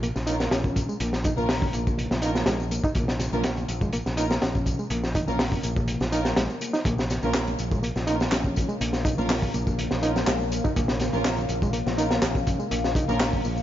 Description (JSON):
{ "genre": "breakbeat, breaks", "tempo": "123 BPM", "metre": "4/4", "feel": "straight", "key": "Bb minor pentatonic", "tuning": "A4 = 438 Hz", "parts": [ { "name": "reed electric piano", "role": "riff", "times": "0.0-13.6 s", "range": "Ab3 to Eb4", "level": "-30 LUFS", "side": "equal", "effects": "fast tremolo, ping-pong delay" }, { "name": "picked electric bass", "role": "bass", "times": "0.0-13.6 s", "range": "Bb1", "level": "-29 LUFS", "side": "equal", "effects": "tube saturation" }, { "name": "crunchy breakbeat drum kit", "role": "drums", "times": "0.0-13.4 s", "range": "hi-hat, kick drum, snare drum", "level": "-26 LUFS", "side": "equal", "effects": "none" }, { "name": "electronic tambourine and handclaps", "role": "drums", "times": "0.0-13.6 s", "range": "none", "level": "-38 LUFS", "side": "left 1 dB", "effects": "overdrive" }, { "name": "dark studio string section", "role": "stabs", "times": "0.3-13.2 s", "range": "Bb3 to Bb4", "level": "-32 LUFS", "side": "right 2 dB", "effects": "ping-pong delay" }, { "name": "congas", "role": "percussion", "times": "0.8-13.4 s", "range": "none", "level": "-38 LUFS", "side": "right 2 dB", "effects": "none" }, { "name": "deep dark ambient pad", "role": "sustained chords", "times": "7.9-13.6 s", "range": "Bb3 to F5", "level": "-32 LUFS", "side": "left 4 dB", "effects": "chorus, built-in reverb, sidechain pumping" } ], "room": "studio reverb", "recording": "nothing above 7.5 kHz", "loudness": "-23 LUFS", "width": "side -12 dB against mid", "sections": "0.0-13.6 A section", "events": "none", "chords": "0.0 Bbm" }